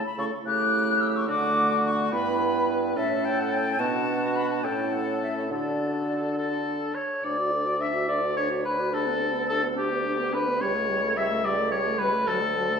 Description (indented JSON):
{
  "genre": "quick classical-period movement for wind quintet",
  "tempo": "72 BPM (dotted quarters)",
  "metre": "6/8",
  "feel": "straight",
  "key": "D major",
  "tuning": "A4 = 440 Hz",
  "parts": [
    { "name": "silver concert flute", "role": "melody", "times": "0.0-12.8 s", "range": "G4 to F#6", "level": "-30 LUFS", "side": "left 3 dB", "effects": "none" },
    { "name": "warm oboe", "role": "second line", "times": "0.0-12.8 s", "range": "F#4 to E5", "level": "-28 LUFS", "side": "left 2 dB", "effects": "none" },
    { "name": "dark clarinet", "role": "accompaniment", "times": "0.0-12.8 s", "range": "D4 to D5", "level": "-34 LUFS", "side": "right 6 dB", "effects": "none" },
    { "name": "mellow French horn", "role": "accompaniment", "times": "0.0-12.8 s", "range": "F#3 to F#4", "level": "-31 LUFS", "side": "right 1 dB", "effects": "none" },
    { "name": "clear bassoon", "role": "bass", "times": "0.0-12.8 s", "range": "C#2 to D3", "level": "-31 LUFS", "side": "right 2 dB", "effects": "none" }
  ],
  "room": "wet recital hall reverb, RT60 1.6 s",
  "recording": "recorded in a church or concert hall",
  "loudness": "-23 LUFS",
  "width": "side -6 dB against mid",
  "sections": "0.0-7.2 A section; 7.2-12.8 B section",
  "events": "none",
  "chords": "0.5 A7/C#; 1.3 D; 2.1 Em/G; 3.0 A; 3.8 Bm; 4.6 A; 5.5 D; 8.9 G/D; 10.6 A7/C#; 12.3 D"
}